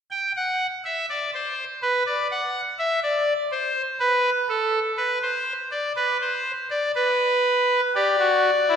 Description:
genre	classical, baroque-style 3-part fugue for pipe organ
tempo	61 BPM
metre	4/4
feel	straight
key	G major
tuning	A4 = 440 Hz
part	pipe organ, trumpet	solo	0.1-8.8 s	E4 to G5	-20 LUFS	equal	none
room	wet scoring stage reverb, RT60 1.4 s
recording	nothing above 10.7 kHz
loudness	-21 LUFS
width	side -7 dB against mid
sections	0.1-7.9 A section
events	none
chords	0.1 N.C.; 7.9 G5

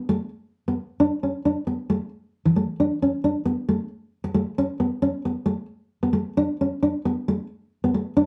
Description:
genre	highlife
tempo	134 BPM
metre	4/4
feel	straight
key	unclear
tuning	A4 = 440 Hz
part	nylon-string guitar	solo	0.0-8.3 s	E3 to D4	-24 LUFS	equal	none
room	wet studio reverb, RT60 0.6 s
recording	band playing live in one room, nothing above 10.9 kHz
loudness	-25 LUFS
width	mono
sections	0.0-6.4 A section; 6.4-8.3 B section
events	none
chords	none

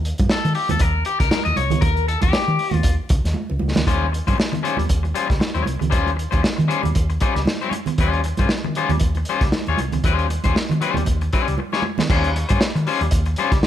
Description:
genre	funk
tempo	117 BPM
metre	4/4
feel	swing 56% on 16ths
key	Eb mixolydian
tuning	A4 = 440 Hz
part	hollow-body short-scale fingered electric bass	bass	0.0-13.6 s	C2 to Eb3	-22 LUFS	equal	none
part	crunchy breakbeat drum kit	drums	0.1-13.7 s	crash cymbal, hi-hat, kick drum, snare drum	-21 LUFS	equal	none
part	congas	percussion	0.2-12.1 s	none	-27 LUFS	right 6 dB	none
part	electric guitar at the edge of break-up	accompaniment	0.3-13.7 s	G3 to Eb5	-23 LUFS	left 6 dB	none
room	light reverb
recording	none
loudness	-17 LUFS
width	side -11 dB against mid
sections	0.0-3.9 A section; 3.9-12.1 B section; 12.1-13.7 C section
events	clean electric guitar solo 0.0-3.9; drum fill 3.4-3.9, 11.6-12.1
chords	0.0 Eb; 3.9 Eb13

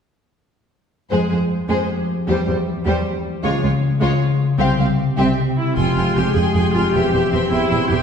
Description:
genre	cinematic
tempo	103 BPM (dotted quarters)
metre	6/8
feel	straight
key	F harmonic minor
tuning	A4 = 440 Hz
part	warm symphonic violin section	melody	1.1-8.0 s	C5 to C6	-28 LUFS	left 3 dB	none
part	rich symphonic violin section	second line	1.1-8.0 s	F4 to Ab5	-26 LUFS	left 1 dB	none
part	clear symphonic viola section	accompaniment	1.1-8.0 s	G3 to Ab4	-22 LUFS	right 1 dB	none
part	concert harp	arpeggios	1.1-8.0 s	C3 to F5	-21 LUFS	left 3 dB	none
part	warm symphonic cello section	bass	1.1-8.0 s	C2 to F2	-23 LUFS	right 3 dB	none
part	mellow French horn section	sustained chords	5.8-8.0 s	Ab3 to G4	-23 LUFS	left 4 dB	none
part	rich symphonic double bass section	bass	5.8-8.0 s	E1 to F1	-23 LUFS	right 4 dB	none
room	wet scoring stage reverb, RT60 1.8 s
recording	heard from further back in the room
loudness	-16 LUFS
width	side -7 dB against mid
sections	1.1-5.8 A section; 5.8-8.0 B section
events	none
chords	1.1 Fmadd9; 2.3 C/E; 3.4 Db; 4.6 Csus4; 5.2 C; 5.8 Fmadd9; 6.9 C/E

